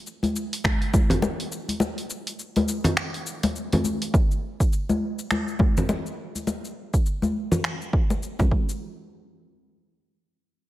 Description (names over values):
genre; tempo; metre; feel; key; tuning
downtempo; 103 BPM; 4/4; swing 59% on 16ths; none; none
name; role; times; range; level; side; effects
deep house drum kit; drums; 0.1-8.8 s; cabasa, finger snaps, hi-hat; -31 LUFS; equal; overdrive
congas; percussion; 0.2-8.5 s; none; -25 LUFS; left 1 dB; none
electronic kick drum; drums; 0.6-8.6 s; none; -21 LUFS; right 1 dB; overdrive
room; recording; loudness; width
light reverb, digital ambience; none; -22 LUFS; side -15 dB against mid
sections
0.0-4.1 A section; 4.1-8.8 B section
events
kick drops out 1.8-4.1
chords
none